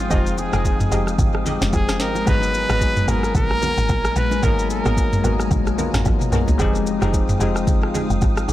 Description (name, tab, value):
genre	amapiano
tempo	111 BPM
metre	4/4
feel	swing 58% on 16ths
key	unclear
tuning	A4 = 439 Hz
part	warm trumpet	melody	0.0-5.5 s	F4 to Cb5	-24 LUFS	equal	analog delay
part	bell-like tine electric piano	accompaniment	0.0-8.5 s	F3 to G5	-25 LUFS	left 4 dB	analog delay
part	glassy FM pad	sustained chords	0.0-8.5 s	Ab3 to Eb6	-29 LUFS	left 3 dB	ensemble chorus, built-in reverb, sidechain pumping
part	tight log drum bass	bass	0.0-8.5 s	F1 to Bb1	-23 LUFS	equal	none
part	punchy chord stab	stabs	0.1-8.5 s	Cb4 to Bb5	-30 LUFS	right 3 dB	chorus, analog delay
part	afro-pop drum kit	drums	0.1-8.5 s	kick drum, rim click, shaker, snare drum, toms	-21 LUFS	equal	analog delay
part	congas and bongos	percussion	0.1-8.4 s	none	-31 LUFS	right 2 dB	none
room	digital ambience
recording	echo-heavy mix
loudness	-17 LUFS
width	side -14 dB against mid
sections	0.0-8.5 A section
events	drum fill 6.1-6.6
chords	0.0 Fm9; 2.3 Abm9; 6.6 Fm9